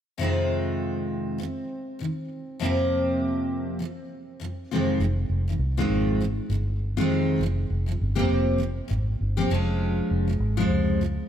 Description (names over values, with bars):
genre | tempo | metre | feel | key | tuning
pop | 100 BPM | 4/4 | swing 55% on 16ths | F minor | A4 = 445 Hz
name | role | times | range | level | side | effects
picked steel-string acoustic guitar | accompaniment | 0.2-11.3 s | F2 to G4 | -25 LUFS | equal | double-tracked left and right
vintage muted fingered electric bass | bass | 5.0-11.2 s | F1 to Db2 | -25 LUFS | equal | none
room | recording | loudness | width
moderate plate reverb, RT60 2.6 s | none | -23 LUFS | side -9 dB against mid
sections
0.2-5.0 A section; 5.0-11.3 B section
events
none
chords
0.2 Fm7; 2.6 C7sus4/F; 4.7 Fm7; 7.4 C7sus4/F; 9.5 Dbmaj7/F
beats
| 0.18 0.79 1.39 1.99 | 2.59 3.19 3.79 4.39 | 5.00 5.60 6.20 6.80 | 7.40 8.00 8.60 9.20 | 9.80 10.40 11.01